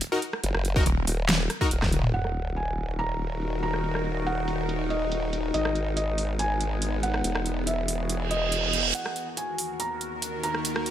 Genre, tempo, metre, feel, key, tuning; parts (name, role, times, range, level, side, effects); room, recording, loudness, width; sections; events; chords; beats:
heavy wobble dubstep; 141 BPM; 4/4; half-time; Eb phrygian; A4 = 440 Hz
big-room dance drum kit; drums; 0.0-10.9 s; hi-hat, rim click, snare drum, toms; -29 LUFS; equal; overdrive, low-pass filter on hats, low-pass filter on snare, low-pass filter on toms
supersaw stab; stabs; 0.1-1.7 s; Eb4 to Bb4; -30 LUFS; left 2 dB; dub echo
formant-sweep wobble bass; bass; 0.4-8.9 s; Eb1 to Ab1; -29 LUFS; equal; chorus, overdrive
electronic kick drum; drums; 0.8-1.9 s; -24 LUFS; equal; overdrive
snarling distorted saw bass; bass; 0.9-1.1 s; Eb1; -28 LUFS; equal; distortion, overdrive
felt-muted upright piano; melody; 2.1-10.9 s; Eb5 to Bb5; -31 LUFS; right 2 dB; dub echo
evolving wavetable pad; sustained chords; 2.7-10.9 s; Eb2 to Bb4; -32 LUFS; left 1 dB; phaser, built-in reverb, sidechain pumping
sub drop, reverse cymbal and riser; sound effects; 2.1-3.8, 8.3-10.9 s; -31 LUFS; right 4 dB
light reverb; -25 LUFS; side -11 dB against mid
0.0-2.1 A section; 2.1-8.9 B section; 8.9-10.9 C section
drop 0.0-2.1; drum fill 1.9; impact 2.1-3.8; filter sweep on drum 2.1-8.9; reverse cymbal 8.3-8.9; build-up 8.9-10.9; riser 8.9-10.9
0.0 Ebm; 5.5 Abm; 7.2 Eadd9; 8.9 Ebm
0.01 | 0.43 0.86 1.29 1.71 | 2.14 2.56 2.99 3.41 | 3.84 4.26 4.69 5.12 | 5.54 5.97 6.39 6.82 | 7.24 7.67 8.10 8.52 | 8.95 9.37 9.80 10.22 | 10.65